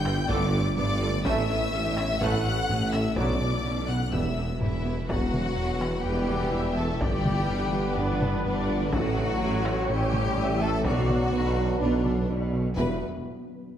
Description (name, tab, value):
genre	cinematic, hybrid orchestral and electronic film score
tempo	125 BPM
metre	4/4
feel	straight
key	E dorian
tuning	A4 = 439 Hz
part	rich studio violin section	melody	0.0-13.0 s	D5 to G6	-36 LUFS	left 4 dB	low-pass filter
part	warm symphonic violin section	second line	0.0-13.0 s	D4 to G5	-32 LUFS	left 2 dB	none
part	granular cloud pad	sustained chords	0.0-13.0 s	E3 to C#5	-36 LUFS	equal	none
part	mellow tuba	bass	0.0-13.0 s	E1 to B1	-32 LUFS	right 2 dB	none
part	rich studio cello section	bass	0.0-13.0 s	E2 to B2	-33 LUFS	right 2 dB	none
part	saturated sub bass	bass	0.0-13.0 s	E1 to B1	-36 LUFS	left 1 dB	none
part	warm chamber double bass section	bass	0.0-13.0 s	E1 to B1	-32 LUFS	right 2 dB	none
part	warm studio viola section	accompaniment	0.1-13.0 s	G3 to E5	-36 LUFS	right 1 dB	low-pass filter
part	smooth synth bass	riff	0.1-12.7 s	E2 to B3	-34 LUFS	right 1 dB	none
part	taiko ensemble	drums	0.1-12.9 s	none	-33 LUFS	left 1 dB	none
part	mellow French horn section	sustained chords	0.3-13.0 s	D3 to B4	-35 LUFS	left 4 dB	low-pass filter
part	mellow trombone section	sustained chords	0.3-13.0 s	A2 to E4	-36 LUFS	right 4 dB	low-pass filter
room	moderate scoring stage reverb, RT60 1.8 s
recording	none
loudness	-24 LUFS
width	side -10 dB against mid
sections	0.0-5.1 A section; 5.1-12.8 B section; 12.8-13.8 C section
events	filter sweep 5.1-12.8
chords	0.0 Gadd9; 1.3 A; 3.2 Bm; 4.1 Em; 5.1 Emadd9; 7.0 Gadd9; 8.9 A; 10.9 Bm; 12.8 Emadd9